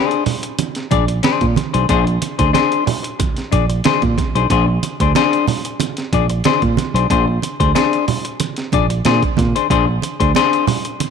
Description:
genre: funk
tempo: 92 BPM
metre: 4/4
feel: straight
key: Bb mixolydian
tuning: A4 = 440 Hz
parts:
  - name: semi-hollow electric guitar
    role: accompaniment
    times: 0.0-11.0 s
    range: D4 to D5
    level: -18 LUFS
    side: left 10 dB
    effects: none
  - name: breakbeat sampler-style drum kit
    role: drums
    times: 0.1-11.1 s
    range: hi-hat, kick drum, snare drum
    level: -21 LUFS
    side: right 2 dB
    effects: none
  - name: congas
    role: percussion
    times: 0.3-11.1 s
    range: none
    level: -22 LUFS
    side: right 11 dB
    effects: none
  - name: fingered electric bass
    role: bass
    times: 0.9-10.3 s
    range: Bb1 to Bb2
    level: -17 LUFS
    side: right 2 dB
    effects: none
room: light reverb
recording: 1960s-style stereo with parts hard left and right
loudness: -14 LUFS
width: side -6 dB against mid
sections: 0.0-11.1 A section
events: none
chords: 0.0 Bb9

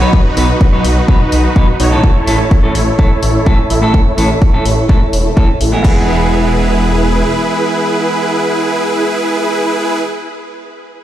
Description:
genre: EDM, festival progressive house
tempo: 126 BPM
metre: 4/4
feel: straight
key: E major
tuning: A4 = 440 Hz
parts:
  - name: clean electric guitar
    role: accompaniment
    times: 0.0-10.0 s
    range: A2 to B4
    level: -18 LUFS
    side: right 1 dB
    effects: sidechain pumping, ping-pong delay
  - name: supersaw chords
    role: riff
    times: 0.0-10.0 s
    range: D#4 to E5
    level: -15 LUFS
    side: right 1 dB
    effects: sidechain pumping, low-pass filter, ping-pong delay
  - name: wide detuned saw bass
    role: bass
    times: 0.0-7.2 s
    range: E1 to B1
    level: -14 LUFS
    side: equal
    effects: chorus, sidechain pumping
  - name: electronic kick drum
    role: drums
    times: 0.1-5.9 s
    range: none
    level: -10 LUFS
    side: equal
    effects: none
  - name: house drum kit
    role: drums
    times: 0.4-5.9 s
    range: crash cymbal, hi-hat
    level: -25 LUFS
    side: left 3 dB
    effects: none
room: light reverb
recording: played on a big sound system in a bare room, stone room reverb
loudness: -10 LUFS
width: side -12 dB against mid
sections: 0.0-5.8 A section; 5.8-9.7 B section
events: filter sweep on supersaw synth 0.0-5.8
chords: 0.0 B; 2.0 A; 5.8 E

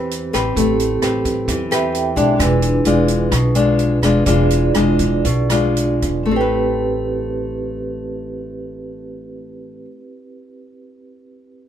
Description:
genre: bossa nova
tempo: 111-131 BPM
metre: 4/4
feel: straight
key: A minor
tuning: A4 = 439 Hz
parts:
  - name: nylon-string guitar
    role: accompaniment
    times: 0.0-10.0 s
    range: B2 to B4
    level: -18 LUFS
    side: left 3 dB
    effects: none
  - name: vibraphone with soft mallets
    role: accompaniment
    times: 0.0-11.7 s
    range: C4 to A5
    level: -22 LUFS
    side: right 4 dB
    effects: none
  - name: upright bass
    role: bass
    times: 0.0-9.8 s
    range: E1 to E2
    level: -21 LUFS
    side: right 1 dB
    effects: none
  - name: open jazz drum kit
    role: drums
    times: 0.1-6.1 s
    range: hi-hat, kick drum, rim click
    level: -24 LUFS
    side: right 1 dB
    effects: none
room: light reverb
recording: minimal, uncompressed stereo recording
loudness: -15 LUFS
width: side -10 dB against mid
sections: 0.0-6.3 A section; 6.3-10.6 B section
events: vibraphone fill 1.5-2.4; slowing down 2.4-6.3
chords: 0.0 Am9; 2.4 E7b9; 6.3 Am9

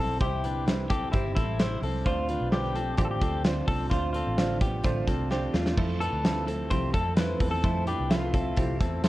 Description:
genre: jangly indie pop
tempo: 129 BPM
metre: 4/4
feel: straight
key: unclear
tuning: A4 = 440 Hz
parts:
  - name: electric guitar through a small old amp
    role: melody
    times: 0.0-8.8 s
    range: E4 to C5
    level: -32 LUFS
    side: left 2 dB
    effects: none
  - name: picked steel-string acoustic guitar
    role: accompaniment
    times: 0.0-9.1 s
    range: C3 to F4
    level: -35 LUFS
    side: right 4 dB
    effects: none
  - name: warm upright piano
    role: accompaniment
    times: 0.0-9.1 s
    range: D4 to E5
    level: -37 LUFS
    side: right 4 dB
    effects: none
  - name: direct-recorded clean electric guitar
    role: arpeggios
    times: 0.0-9.1 s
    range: A3 to C5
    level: -35 LUFS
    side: left 3 dB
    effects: wide subtle chorus
  - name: vintage muted picked electric bass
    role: bass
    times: 0.0-9.1 s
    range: G1 to F2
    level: -31 LUFS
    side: equal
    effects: none
  - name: big rock drum kit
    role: drums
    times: 0.2-9.1 s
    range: crash cymbal, hi-hat, kick drum, snare drum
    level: -28 LUFS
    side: equal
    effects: none
room: light reverb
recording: worn, warbling old tape, cassette tape, warbly pitch drift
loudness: -24 LUFS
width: side -16 dB against mid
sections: 0.0-9.1 A section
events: drum fill 5.3-5.8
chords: 0.0 C; 2.1 Dm7; 5.8 Fmaj7

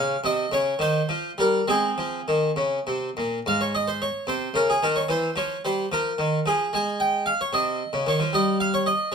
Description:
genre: classical, baroque-style suite movement for harpsichord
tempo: 66-76 BPM (dotted quarters)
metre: 6/8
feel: rubato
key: Ab major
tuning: A4 = 436 Hz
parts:
  - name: harpsichord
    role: solo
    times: 0.0-9.1 s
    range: Ab2 to Ab5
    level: -22 LUFS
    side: equal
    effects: none
room: light reverb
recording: minimal, uncompressed stereo recording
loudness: -22 LUFS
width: side -6 dB against mid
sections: 0.0-3.5 A section; 3.5-9.1 A section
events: none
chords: 0.0 Dbmaj9/C; 0.8 Eb; 1.7 Ab; 3.5 Abadd11; 5.1 Cadd11/E; 5.9 Ebsus24; 6.7 Ab; 8.3 N.C.

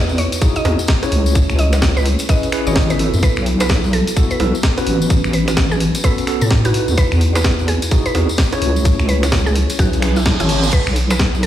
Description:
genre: UK garage, two-step garage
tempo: 128 BPM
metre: 4/4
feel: swing 61% on 16ths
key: C# minor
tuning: A4 = 441 Hz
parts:
  - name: mellow tine electric piano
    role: stabs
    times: 0.0-10.7 s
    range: B3 to D#5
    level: -22 LUFS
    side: equal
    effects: medium stereo tremolo, vintage 12-bit sampler grit, dub echo
  - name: deep soft wobble bass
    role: bass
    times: 0.0-11.5 s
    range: G#1 to A2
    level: -16 LUFS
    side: equal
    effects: chorus
  - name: tambourine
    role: percussion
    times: 0.1-11.4 s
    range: none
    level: -30 LUFS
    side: left 3 dB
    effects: none
  - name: mallet-like synth pluck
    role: melody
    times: 0.2-11.5 s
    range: E4 to D#5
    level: -25 LUFS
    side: right 1 dB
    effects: chorus, ping-pong delay
  - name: breakbeat sampler-style drum kit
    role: drums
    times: 0.2-11.5 s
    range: bongos, crash cymbal, finger snaps, hi-hat, snare drum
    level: -22 LUFS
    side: right 1 dB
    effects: none
  - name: electronic kick drum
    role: drums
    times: 0.4-11.3 s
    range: none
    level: -15 LUFS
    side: equal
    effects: none
  - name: reverse cymbal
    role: sound effects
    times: 10.0-10.7 s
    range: none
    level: -23 LUFS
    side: right 4 dB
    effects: none
room: little or no reverb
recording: played on a big sound system in a bare room, stone room reverb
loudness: -13 LUFS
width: side -12 dB against mid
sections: 0.0-11.5 A section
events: reverse cymbal 10.0-10.7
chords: 0.0 Emaj9; 1.1 C#m7; 3.2 B7sus4; 4.9 A69; 6.7 Emaj9; 8.6 C#m7; 10.7 N.C.

